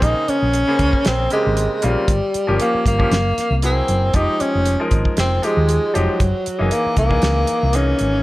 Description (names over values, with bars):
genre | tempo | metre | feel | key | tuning
electric jazz fusion | 116 BPM | 4/4 | swing 54% on 16ths | Bb dorian | A4 = 442 Hz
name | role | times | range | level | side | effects
breathy tenor saxophone | melody | 0.0-8.2 s | Gb3 to Eb4 | -19 LUFS | equal | none
bright grand piano | accompaniment | 0.0-8.2 s | Db3 to C5 | -24 LUFS | left 1 dB | none
hollow-body short-scale fingered electric bass | bass | 0.0-8.2 s | F1 to Eb2 | -19 LUFS | equal | none
damped 70s drum kit | drums | 0.0-8.1 s | hi-hat, kick drum, snare drum | -21 LUFS | equal | none
room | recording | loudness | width
light reverb | none | -15 LUFS | side -17 dB against mid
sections
0.0-8.2 A section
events
none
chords
0.0 Bbm9; 2.1 Gm7b5; 3.1 Gb9; 4.1 Fm9; 6.2 Gb13